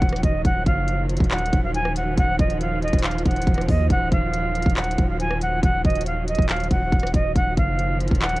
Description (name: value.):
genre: hip hop, trap.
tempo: 139 BPM.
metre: 4/4.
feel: half-time.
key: Eb minor.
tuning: A4 = 438 Hz.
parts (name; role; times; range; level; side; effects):
jazz flute; melody; 0.0-8.4 s; Eb5 to Ab5; -25 LUFS; right 1 dB; low-pass filter, ping-pong delay.
warm studio string section; sustained chords; 0.0-8.4 s; Eb3 to Gb3; -28 LUFS; right 2 dB; none.
long sustained 808-style bass; bass; 0.0-8.4 s; Eb1 to Eb2; -25 LUFS; equal; none.
trap drum kit; drums; 0.0-8.4 s; handclaps, hi-hat, kick drum, rim click; -21 LUFS; equal; none.
room: little or no reverb.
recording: worn, warbling old tape, cassette tape, warbly pitch drift.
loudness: -19 LUFS.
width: side -19 dB against mid.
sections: 0.0-8.4 A section.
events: none.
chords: 0.0 Ebmadd9.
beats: 0.02 | 0.45 0.88 1.31 1.74 | 2.18 2.61 3.04 3.47 | 3.90 4.33 4.77 5.20 | 5.63 6.06 6.49 6.92 | 7.36 7.79 8.22.